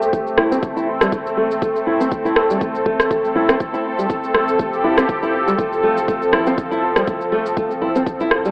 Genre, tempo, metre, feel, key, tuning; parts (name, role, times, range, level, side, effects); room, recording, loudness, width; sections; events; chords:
afro house; 121 BPM; 4/4; swing 56% on 16ths; A minor; A4 = 441 Hz
warm analog pad; sustained chords; 0.0-8.5 s; F3 to A4; -20 LUFS; equal; chorus, tremolo, sidechain pumping, cassette tape
warm sub bass; bass; 0.0-8.5 s; E1 to C2; -42 LUFS; equal; sidechain pumping
electronic shaker and rim click; drums; 0.0-8.5 s; -18 LUFS; equal; overdrive, small room ambience, cassette tape
nylon-string guitar; arpeggios; 0.1-8.5 s; G3 to E4; -20 LUFS; equal; sidechain pumping, low-pass filter, cassette tape, tape echo
electronic kick drum; drums; 0.1-8.2 s; -24 LUFS; equal; overdrive, small room ambience, cassette tape
moderate spring reverb, RT60 1.8 s; home recording on cassette, AM radio sound; -15 LUFS; side -30 dB against mid
0.0-8.5 A section
filter sweep on nylon-string guitar 0.0-8.5
0.0 Am7; 4.6 Fadd9